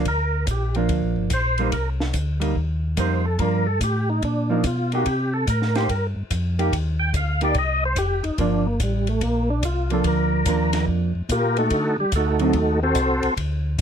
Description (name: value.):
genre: soul jazz organ trio.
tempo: 144 BPM.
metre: 4/4.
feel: swing 66% on 8ths.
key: G minor.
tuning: A4 = 440 Hz.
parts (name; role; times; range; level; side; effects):
hollow-body jazz guitar; accompaniment; 0.0-12.5 s; D3 to G4; -23 LUFS; right 3 dB; none.
mellow tonewheel organ; bass; 0.0-13.8 s; F1 to D3; -23 LUFS; left 1 dB; slow rotary speaker.
percussive tonewheel organ; melody; 0.1-13.3 s; G3 to G5; -23 LUFS; equal; chorus vibrato, slow rotary speaker.
compact cocktail drum kit; drums; 0.1-13.8 s; hi-hat, kick drum, ride cymbal, snare drum; -29 LUFS; left 1 dB; none.
room: light reverb.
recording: close, detailed microphones.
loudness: -20 LUFS.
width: side -8 dB against mid.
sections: 0.0-13.8 A section.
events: tonewheel organ solo 0.0-13.8.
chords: 0.0 Gm7; 1.7 Cm7; 3.4 Gm7; 5.1 Cm; 8.4 Gm7; 11.7 D7b9.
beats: | 0.06 0.48 0.90 1.31 | 1.73 2.15 2.56 2.98 | 3.39 3.81 4.23 4.64 | 5.06 5.48 5.89 6.31 | 6.72 7.14 7.56 7.97 | 8.39 8.80 9.22 9.64 | 10.05 10.47 10.88 11.30 | 11.71 12.13 12.54 12.96 | 13.37 13.79.